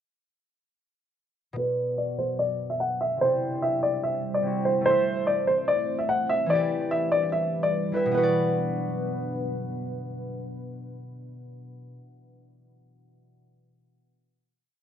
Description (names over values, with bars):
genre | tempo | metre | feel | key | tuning
hip hop, drill | 146 BPM | 4/4 | half-time | B phrygian | A4 = 441 Hz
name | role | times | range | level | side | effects
concert harp | accompaniment | 1.5-12.0 s | B2 to E5 | -31 LUFS | left 2 dB | low-pass filter
dark concert grand piano | melody | 1.6-9.3 s | B4 to F#5 | -24 LUFS | equal | low-pass filter, tape echo
deep dark ambient pad | sustained chords | 2.3-11.3 s | F#3 to C5 | -33 LUFS | right 2 dB | chorus, built-in reverb, low-pass filter
room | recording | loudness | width
moderate studio reverb, RT60 0.7 s | rough home demo mix | -23 LUFS | side -9 dB against mid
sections
1.6-8.1 breakdown; 8.1-11.4 final chord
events
filter sweep 1.6-8.1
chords
1.6 Bm; 3.2 Cadd9; 4.9 Am; 6.5 Em7; 8.1 Bm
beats
| 1.57 1.98 2.39 2.80 | 3.21 3.62 4.03 4.45 | 4.86 5.27 5.68 6.09 | 6.50 6.91 7.32 7.73 | 8.14 8.55 8.97 9.38 | 9.79 10.20 10.61 11.02